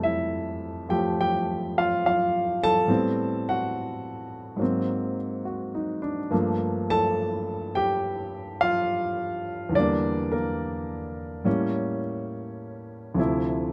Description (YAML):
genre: solo jazz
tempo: 70 BPM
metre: 4/4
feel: swing 66% on 8ths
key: unclear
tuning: A4 = 439 Hz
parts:
  - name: warm baby grand piano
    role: solo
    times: 0.0-13.7 s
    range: D2 to A5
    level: -27 LUFS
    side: equal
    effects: none
room: light reverb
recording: none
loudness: -27 LUFS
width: mono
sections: 0.0-13.7 A section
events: none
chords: 0.0 Fmaj9; 2.9 Am9; 4.6 G#9; 6.3 Gm9; 9.7 Em7b5; 11.5 A7b9; 13.2 Dm9